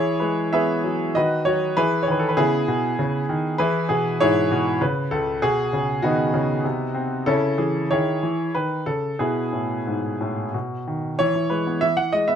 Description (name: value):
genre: classical-period piano sonatina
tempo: 90-100 BPM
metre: 3/4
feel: rubato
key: E major from 3.6 s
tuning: A4 = 441 Hz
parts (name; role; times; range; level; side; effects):
- warm grand piano; solo; 0.0-12.4 s; C#2 to F#5; -20 LUFS; equal; none
room: little or no reverb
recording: close, detailed microphones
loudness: -20 LUFS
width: side -8 dB against mid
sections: 0.0-11.2 A section; 11.2-12.4 B section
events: none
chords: 0.0 E; 1.2 B/D#; 1.8 E; 4.8 N.C.; 5.4 B; 6.6 Cdim; 7.3 C#m; 9.2 E; 10.5 B; 11.2 E